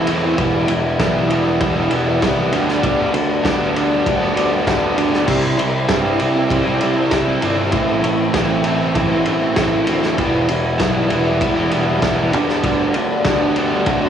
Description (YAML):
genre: indie rock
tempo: 98 BPM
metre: 4/4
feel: straight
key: unclear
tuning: A4 = 441 Hz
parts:
  - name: biting overdriven guitar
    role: riff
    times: 0.0-14.1 s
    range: A2 to F#4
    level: -19 LUFS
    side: right 5 dB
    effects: analog chorus, cassette tape, tape echo
  - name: distorted electric guitar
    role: riff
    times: 0.0-14.1 s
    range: A2 to E4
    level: -20 LUFS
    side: left 6 dB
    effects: overdrive, cassette tape
  - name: picked electric bass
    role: bass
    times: 0.0-14.1 s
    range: E1 to G2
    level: -22 LUFS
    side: equal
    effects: none
  - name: loose indie drum kit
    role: drums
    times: 0.1-14.0 s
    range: crash cymbal, kick drum, ride cymbal, snare drum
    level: -21 LUFS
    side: equal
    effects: cassette tape
room: little or no reverb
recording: home recording on cassette, studio ambience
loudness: -15 LUFS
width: side -8 dB against mid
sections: 0.0-14.1 A section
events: none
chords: 0.4 Em; 2.5 G/D; 5.3 C; 7.7 Am; 10.2 Em; 12.3 G/D